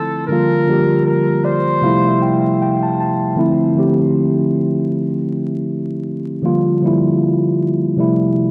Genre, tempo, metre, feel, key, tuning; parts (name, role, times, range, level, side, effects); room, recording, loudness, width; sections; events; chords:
hip hop; 78 BPM; 4/4; swing 60% on 16ths; D minor; A4 = 440 Hz
trumpet with bucket mute; melody; 0.0-2.6 s; A4 to C5; -23 LUFS; equal; low-pass filter, diffuse ambient delay
mellow tine electric piano; accompaniment; 0.0-8.5 s; C3 to A5; -17 LUFS; equal; cassette tape, low-pass filter
wet plate reverb, RT60 2.6 s; dreamy mix soaked in reverb, vinyl crackle; -16 LUFS; mono
0.0-8.5 A section
0.3 Gm7; 1.8 Fmaj9; 3.4 Dm9; 6.4 Gm7; 8.0 Fmaj9